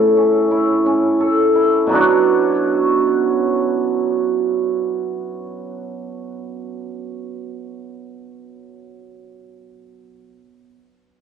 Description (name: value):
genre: folktronica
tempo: 87 BPM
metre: 4/4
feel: straight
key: B minor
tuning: A4 = 440 Hz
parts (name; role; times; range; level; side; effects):
- cimbalom; solo; 0.0-10.7 s; A2 to C#5; -16 LUFS; right 2 dB; none
room: moderate booth ambience, RT60 0.2 s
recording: dry, close 1970s-style studio recording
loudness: -14 LUFS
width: side -7 dB against mid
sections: 0.0-1.9 A section; 1.9-4.7 B section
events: none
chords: 0.0 A; 1.9 Bmadd9